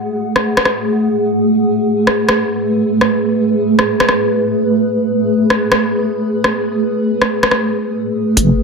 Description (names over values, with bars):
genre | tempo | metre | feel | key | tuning
deep dubstep | 140 BPM | 4/4 | swing 61% on 16ths, half-time | F# minor | A4 = 440 Hz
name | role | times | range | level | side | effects
granular cloud pad | sustained chords | 0.0-8.6 s | A3 to F#5 | -14 LUFS | right 1 dB | built-in reverb
deep house drum kit | drums | 0.4-8.5 s | hi-hat, rim click | -15 LUFS | left 1 dB | none
deep soft wobble bass | bass | 8.4-8.6 s | F#1 | -12 LUFS | equal | chorus
electronic kick drum | drums | 8.4-8.5 s | none | -22 LUFS | equal | high-pass filter on kick
room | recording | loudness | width
wet spring reverb, RT60 1.3 s | none | -12 LUFS | side -4 dB against mid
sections
0.0-8.4 A section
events
filter sweep on ambient pad 0.0-8.4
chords
0.0 F#madd9